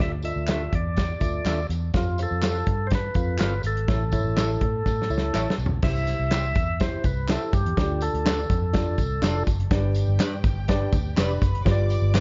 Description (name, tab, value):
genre	uptempo 1960s-style soul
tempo	124 BPM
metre	4/4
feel	straight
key	D dorian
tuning	A4 = 441 Hz
part	percussive tonewheel organ	melody	0.0-9.4 s	F4 to E5	-32 LUFS	equal	slow rotary speaker
part	mellow tine electric piano	accompaniment	0.0-12.2 s	G2 to F5	-31 LUFS	equal	none
part	vintage muted fingered electric bass	bass	0.0-12.2 s	F1 to A2	-29 LUFS	equal	none
part	natural country drum kit	drums	0.0-12.2 s	crash cymbal, hi-hat, kick drum, snare drum, toms	-28 LUFS	equal	none
part	tambourine and handclaps	percussion	0.2-12.2 s	none	-42 LUFS	equal	none
part	electric guitar through a small old amp	stabs	0.5-12.2 s	D4 to F5	-36 LUFS	equal	none
part	warm studio violin section	second line	9.7-12.2 s	G4 to D6	-40 LUFS	equal	none
room	light reverb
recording	dark, warm production, nothing above 7.5 kHz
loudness	-24 LUFS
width	mono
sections	0.0-5.8 A section; 5.8-12.2 B section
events	drum fill 4.9-5.8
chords	0.0 Dmadd9; 1.9 F; 3.9 A; 5.8 C; 7.8 Dm; 9.7 G; 11.7 G7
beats	0.48 0.97 1.45 | 1.94 2.42 2.91 3.40 | 3.88 4.37 4.86 5.34 | 5.83 6.31 6.80 7.28 | 7.77 8.26 8.74 9.23 | 9.71 10.20 10.68 11.17 | 11.65 12.14